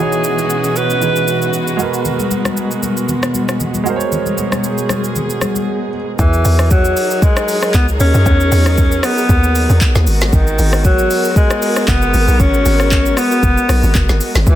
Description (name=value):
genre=amapiano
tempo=116 BPM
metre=4/4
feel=swing 55% on 16ths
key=unclear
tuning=A4 = 441 Hz
part: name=breathy alto saxophone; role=melody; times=0.0-1.8, 6.2-14.6 s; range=D#3 to B4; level=-16 LUFS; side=left 1 dB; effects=ping-pong delay
part: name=warm concert grand piano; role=accompaniment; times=0.0-6.2 s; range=E3 to C#5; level=-20 LUFS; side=right 5 dB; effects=none
part: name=warm studio string section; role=sustained chords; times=0.0-14.6 s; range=B2 to B4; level=-21 LUFS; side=right 1 dB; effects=sidechain pumping
part: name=deep house drum kit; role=drums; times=0.1-14.6 s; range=handclaps, hi-hat, kick drum, rim click, shaker, snare drum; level=-16 LUFS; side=equal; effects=none
part: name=congas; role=percussion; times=2.1-5.7 s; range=none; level=-21 LUFS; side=left 5 dB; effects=none
part: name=hollow log drum bass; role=bass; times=6.2-14.6 s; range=F#1 to F#2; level=-14 LUFS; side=equal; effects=none
room=studio reverb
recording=dense, heavily limited modern master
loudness=-12 LUFS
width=side -12 dB against mid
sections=0.0-6.2 A section; 6.2-14.6 B section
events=break 5.7-6.2; drop 6.2-14.6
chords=0.0 Emaj9#11; 1.8 G#m9; 6.2 Emaj9#11; 10.1 G#m9